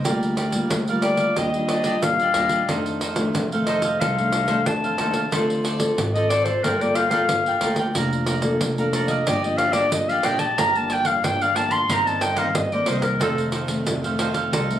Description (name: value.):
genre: samba and choro.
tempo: 91 BPM.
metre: 4/4.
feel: straight.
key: unclear.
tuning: A4 = 440 Hz.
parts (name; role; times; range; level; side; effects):
clear clarinet; melody; 0.0-13.4 s; A4 to C6; -21 LUFS; left 2 dB; none.
cavaquinho; accompaniment; 0.0-14.8 s; D4 to Bb5; -28 LUFS; right 4 dB; none.
nylon-string guitar; accompaniment; 0.0-14.8 s; F2 to A4; -26 LUFS; left 2 dB; none.
upright bass; bass; 0.1-14.8 s; F1 to F2; -28 LUFS; equal; none.
pandeiro; percussion; 0.1-14.8 s; none; -26 LUFS; right 1 dB; none.
room: moderate small room reverb, RT60 0.5 s.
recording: recorded on a phone in the room, studio ambience, compression.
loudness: -19 LUFS.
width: side -11 dB against mid.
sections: 0.0-14.8 A section.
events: clarinet solo 0.0-14.8.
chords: 0.1 Gm7/D; 1.4 Ebmaj9; 2.7 F6; 5.3 Dm7; 6.6 Gm9; 8.0 Bbmaj7/F; 9.3 Ebmaj9/G; 10.6 Gm7; 11.9 Cm7/G; 13.2 F7.